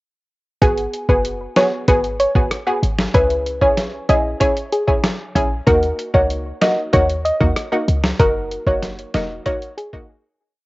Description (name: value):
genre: dancehall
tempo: 95 BPM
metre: 4/4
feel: straight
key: G# minor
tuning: A4 = 441 Hz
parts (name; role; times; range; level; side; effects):
- soft round pluck; melody; 0.6-9.9 s; G#4 to D#5; -19 LUFS; equal; chorus, cassette tape, analog delay
- punchy chord stab; accompaniment; 0.6-10.1 s; A#3 to G#4; -22 LUFS; equal; chorus, cassette tape
- short 808-style bass; bass; 0.6-9.4 s; E1 to D#2; -20 LUFS; equal; none
- lo-fi sampler-style drum kit; drums; 0.6-10.1 s; hi-hat, kick drum, rim click, snare drum; -20 LUFS; equal; overdrive, cassette tape
room: light reverb, digital ambience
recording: home recording on cassette, nothing above 7.8 kHz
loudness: -15 LUFS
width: side -20 dB against mid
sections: 0.6-10.7 verse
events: fade-out 8.2-10.7; break 10.1-10.7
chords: 0.6 G#m7; 3.1 C#m; 5.7 D#m; 8.2 F#6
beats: | 0.62 1.25 1.88 2.51 | 3.14 3.77 4.41 5.04 | 5.67 6.30 6.93 7.57 | 8.20 8.83 9.46